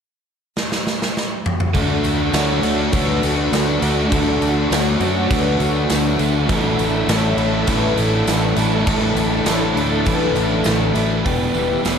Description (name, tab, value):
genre	rock, shoegaze and dream pop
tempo	101 BPM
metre	4/4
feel	straight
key	unclear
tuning	A4 = 439 Hz
part	big rock drum kit	drums	0.6-12.0 s	crash cymbal, hi-hat, kick drum, snare drum, toms	-22 LUFS	equal	none
part	picked plugged-in twelve-string acoustic guitar	arpeggios	1.7-12.0 s	F#4 to C#5	-26 LUFS	left 6 dB	analog chorus, analog delay
part	overdriven electric guitar	riff	1.7-12.0 s	E2 to G4	-22 LUFS	right 9 dB	reverse reverb
part	thick fuzz guitar	riff	1.7-12.0 s	E2 to D4	-21 LUFS	left 6 dB	distortion, wide subtle chorus
part	soft string machine	sustained chords	1.8-12.0 s	D4 to C#6	-26 LUFS	right 1 dB	ensemble chorus
part	growling fingered electric bass	bass	1.8-12.0 s	E1 to F#2	-23 LUFS	equal	overdrive
part	tambourine	percussion	2.0-12.0 s	none	-37 LUFS	right 10 dB	none
room	moderate huge ambient reverb, RT60 6.7 s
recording	dreamy mix soaked in reverb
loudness	-16 LUFS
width	side -7 dB against mid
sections	0.0-1.7 A section; 1.7-11.2 B section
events	drum fill 0.6-1.7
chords	0.0 N.C.; 1.7 Dmaj7; 6.5 Asus4; 11.2 Em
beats	0.55 1.15 | 1.74 2.33 2.93 3.52 | 4.12 4.71 5.30 5.90 | 6.49 7.09 7.68 8.28 | 8.87 9.46 10.06 10.65 | 11.25 11.85